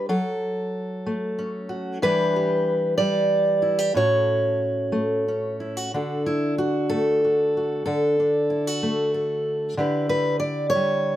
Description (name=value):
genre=folk, solo fingerstyle acoustic guitar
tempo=62 BPM (dotted quarters)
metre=6/8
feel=rubato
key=D major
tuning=A4 = 441 Hz
part: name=fingerpicked steel-string acoustic guitar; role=solo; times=0.0-11.2 s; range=A2 to D5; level=-21 LUFS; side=equal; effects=none
room=light reverb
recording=none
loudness=-21 LUFS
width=side -12 dB against mid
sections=0.0-5.9 A section; 5.9-11.2 B section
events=none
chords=0.1 F#m; 2.0 Em7; 3.9 A6; 5.9 D; 9.8 Em7/D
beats=| 0.09 1.05 | 2.02 2.98 | 3.94 4.92 | 5.92 6.91 | 7.86 8.82 | 9.78 10.75